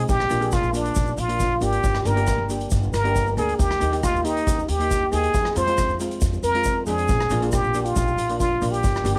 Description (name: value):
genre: calypso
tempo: 137 BPM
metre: 4/4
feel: straight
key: unclear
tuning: A4 = 440 Hz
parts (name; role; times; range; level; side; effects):
- trumpet with plunger mute; melody; 0.0-9.2 s; D4 to C5; -25 LUFS; equal; cassette tape
- steel pan; accompaniment; 0.0-9.2 s; Ab3 to Bb4; -31 LUFS; equal; cassette tape
- upright bass; bass; 0.0-9.2 s; G1 to F2; -29 LUFS; equal; none
- street-band drum kit; drums; 0.1-9.2 s; hi-hat, kick drum, rim click; -29 LUFS; equal; cassette tape
- tube shaker; percussion; 0.1-9.2 s; none; -40 LUFS; equal; none
room: light reverb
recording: home recording on cassette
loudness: -22 LUFS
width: mono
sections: 0.0-9.2 A section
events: none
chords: 0.1 Bb; 1.8 Gm; 3.6 Eb; 5.3 Fm; 7.1 Bb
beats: | 0.09 0.53 0.96 1.40 | 1.84 2.28 2.72 3.15 | 3.59 4.03 4.47 4.90 | 5.34 5.78 6.21 6.65 | 7.09 7.52 7.96 8.40 | 8.83